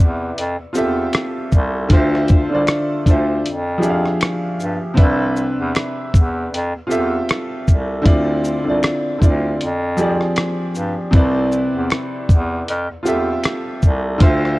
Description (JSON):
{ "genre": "lo-fi hip hop", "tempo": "78 BPM", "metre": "4/4", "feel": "swing 58% on 16ths", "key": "unclear", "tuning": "A4 = 441 Hz", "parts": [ { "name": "warm upright piano", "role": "accompaniment", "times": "0.0-14.6 s", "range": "C3 to F5", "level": "-19 LUFS", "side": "equal", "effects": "none" }, { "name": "clear bass clarinet", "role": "bass", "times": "0.0-14.6 s", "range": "C2 to G2", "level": "-22 LUFS", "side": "equal", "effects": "none" }, { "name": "dusty soul sampler-style drum kit", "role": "drums", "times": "0.4-14.5 s", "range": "hi-hat, kick drum, rim click, shaker", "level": "-14 LUFS", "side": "equal", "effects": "none" }, { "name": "finger snap", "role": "percussion", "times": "1.1-13.6 s", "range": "none", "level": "barely audible", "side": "none", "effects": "none" } ], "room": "studio ambience", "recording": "cassette tape", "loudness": "-15 LUFS", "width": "side -20 dB against mid", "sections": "0.0-14.6 A section", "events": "none", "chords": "0.4 Fmaj9; 1.9 Dm9; 3.4 Fm6; 5.0 Cmaj7; 6.5 Fmaj9; 8.1 Dm9; 9.6 Fm6; 11.1 Cmaj7; 12.7 Fmaj9" }